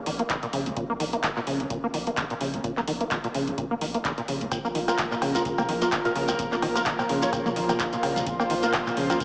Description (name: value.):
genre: acid house.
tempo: 128 BPM.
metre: 4/4.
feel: swing 56% on 16ths.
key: Bb minor.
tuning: A4 = 442 Hz.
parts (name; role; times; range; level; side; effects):
acid bass, saw; riff; 0.1-9.2 s; Bb1 to Bb3; -28 LUFS; equal; analog chorus, diffuse ambient delay.
round analog bass; bass; 0.1-9.1 s; Bb1; -38 LUFS; equal; sidechain pumping.
electro analog drum machine; drums; 0.1-9.2 s; cowbell, handclaps, hi-hat, toms; -29 LUFS; equal; studio reverb.
electronic kick drum; drums; 0.3-9.2 s; none; -38 LUFS; equal; studio reverb.
lush unison pad; sustained chords; 4.5-9.2 s; Bb2 to C5; -28 LUFS; equal; chorus, sidechain pumping.
shekere; percussion; 4.5-9.2 s; none; -36 LUFS; equal; none.
percussive organ stab; stabs; 4.9-9.2 s; Bb3 to Db5; -29 LUFS; equal; ensemble chorus, cassette tape, diffuse ambient delay.
room: wet lush hall reverb, RT60 1.9 s, digital ambience.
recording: dreamy mix soaked in reverb, small speaker sound.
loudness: -24 LUFS.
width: side -28 dB against mid.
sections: 0.0-9.2 A section.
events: none.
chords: 0.0 Bb5.